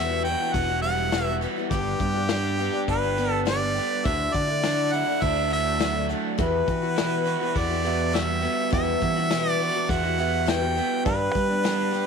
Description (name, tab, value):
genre	folk rock and heartland rock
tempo	103 BPM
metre	4/4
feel	straight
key	unclear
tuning	A4 = 440 Hz
part	clear harmonica	melody	0.0-12.1 s	G4 to G5	-26 LUFS	right 1 dB	none
part	picked twelve-string acoustic guitar	accompaniment	0.0-12.1 s	E2 to G4	-29 LUFS	left 13 dB	none
part	crunchy overdriven guitar	riff	0.0-12.1 s	E2 to G4	-29 LUFS	right 15 dB	none
part	fingered electric bass	bass	0.0-12.0 s	E1 to G3	-29 LUFS	right 1 dB	none
part	soft brush drum kit	drums	0.2-12.1 s	hi-hat, kick drum, snare drum	-30 LUFS	left 4 dB	none
part	dark grand piano	accompaniment	6.4-11.8 s	F#4 to E5	-34 LUFS	right 12 dB	none
room	light reverb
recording	1960s-style stereo with parts hard left and right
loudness	-22 LUFS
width	side -6 dB against mid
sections	0.0-12.1 A section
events	none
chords	0.0 Emadd9; 1.7 G; 4.0 Dadd9; 6.4 Emadd9; 11.1 G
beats	0.55 1.13 | 1.71 2.30 2.88 3.47 | 4.05 4.63 5.22 5.80 | 6.38 6.97 7.55 8.13 | 8.72 9.30 9.88 10.47 | 11.05 11.63